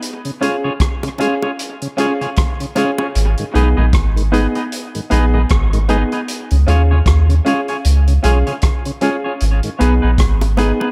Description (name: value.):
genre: dub reggae.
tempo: 77 BPM.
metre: 4/4.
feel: swing 58% on 16ths.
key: unclear.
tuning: A4 = 441 Hz.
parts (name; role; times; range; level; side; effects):
vintage drum kit; drums; 0.0-10.8 s; hi-hat, kick drum, rim click; -21 LUFS; equal; none.
tonewheel organ; accompaniment; 0.3-9.7 s; G#2 to E#4; -27 LUFS; equal; overdrive, slow rotary speaker.
clean electric guitar; accompaniment; 0.4-10.9 s; B3 to D#5; -25 LUFS; equal; dub echo.
warm upright piano; stabs; 0.4-10.8 s; B3 to G#4; -24 LUFS; equal; dub echo.
bongos; percussion; 1.0-3.1, 10.4-10.9 s; none; -30 LUFS; equal; dub echo.
soft dub sub bass; bass; 3.2-10.7 s; G#1 to D#2; -15 LUFS; equal; none.
room: light reverb, studio ambience.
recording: echo-heavy mix.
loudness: -16 LUFS.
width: mono.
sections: 0.0-10.9 A section.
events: break 0.0-3.2; part muted 3.2-9.4.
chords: 0.0 C#; 3.2 G#m; 6.3 C#; 9.4 G#m.